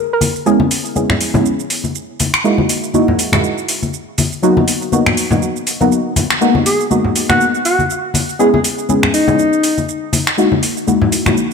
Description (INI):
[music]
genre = deep house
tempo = 121 BPM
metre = 4/4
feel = swing 56% on 16ths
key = unclear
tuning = A4 = 440 Hz
[part]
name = soft round pluck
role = melody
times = 0.0-1.2 s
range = G#4 to A#4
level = -20 LUFS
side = left 1 dB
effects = chorus, ping-pong delay
[part]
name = deep house drum kit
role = drums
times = 0.2-11.5 s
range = finger snaps, hi-hat, shaker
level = -18 LUFS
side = right 1 dB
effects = overdrive
[part]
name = congas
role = percussion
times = 0.2-11.3 s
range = none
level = -19 LUFS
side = left 3 dB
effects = none
[part]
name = deep mellow chord stab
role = stabs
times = 0.5-11.4 s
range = F#3 to G#4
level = -15 LUFS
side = left 1 dB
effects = chorus, ping-pong delay
[part]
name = mellow alto saxophone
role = melody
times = 6.7-9.8 s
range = D#4 to G#4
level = -16 LUFS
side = left 1 dB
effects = dub echo
[sound]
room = moderate lush hall reverb, RT60 1.7 s, small room ambience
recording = none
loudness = -12 LUFS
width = side -5 dB against mid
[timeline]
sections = 0.0-11.5 A section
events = none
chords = 0.5 C#m7; 2.4 F#13; 4.4 Bmaj7; 6.4 G#m9; 8.4 C#m7; 10.4 F#13